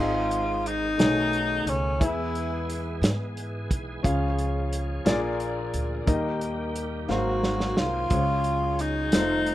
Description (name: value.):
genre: slow gospel.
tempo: 59 BPM (dotted quarters).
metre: 6/8.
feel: straight.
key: unclear.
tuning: A4 = 438 Hz.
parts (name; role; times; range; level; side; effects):
warm tenor saxophone; melody; 0.0-3.0, 7.1-9.5 s; C#4 to Gb4; -26 LUFS; equal; none.
clear grand piano; accompaniment; 0.0-9.5 s; Ab2 to F5; -29 LUFS; left 2 dB; none.
bright tonewheel organ; sustained chords; 0.0-9.5 s; Eb3 to Ab4; -38 LUFS; right 3 dB; fast rotary speaker, overdrive, chorus vibrato.
upright bass; bass; 0.0-9.5 s; F1 to G#2; -31 LUFS; right 1 dB; none.
warm soul drum kit; drums; 0.3-9.5 s; hi-hat, kick drum, snare drum; -26 LUFS; right 1 dB; none.
room: light reverb.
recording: rough home demo mix.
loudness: -24 LUFS.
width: side -14 dB against mid.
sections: 0.0-9.5 A section.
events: drum fill 7.1-8.1.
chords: 0.0 Ab; 1.0 B13; 2.0 E; 4.0 Db; 5.1 Bb7; 6.1 Eb; 7.1 Ab13; 8.1 Db.